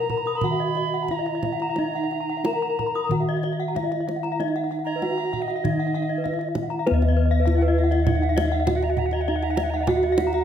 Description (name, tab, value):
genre	Balinese gamelan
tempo	89-100 BPM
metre	4/4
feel	straight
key	Eb pelog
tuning	A4 = 441 Hz
part	gamelan-type bronze metallophone	melody	0.0-10.4 s	Cb4 to Bb4	-26 LUFS	right 1 dB	none
part	alto recorder	second line	0.0-10.4 s	Eb5 to Cb6	-32 LUFS	right 6 dB	none
part	gamelan-type bronze metallophone	arpeggios	0.0-10.4 s	Cb5 to Cb6	-31 LUFS	right 6 dB	none
part	gamelan-type bossed gongs	bass	0.0-10.4 s	Eb2 to Cb5	-26 LUFS	left 2 dB	none
part	gamelan-type bronze metallophone	arpeggios	0.1-10.4 s	Cb5 to Eb6	-29 LUFS	left 6 dB	none
part	kendang	percussion	0.1-10.4 s	none	-30 LUFS	right 4 dB	none
room	moderate recital hall reverb, RT60 1.4 s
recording	none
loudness	-21 LUFS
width	side -9 dB against mid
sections	0.0-6.9 A section; 6.9-10.4 B section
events	none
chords	none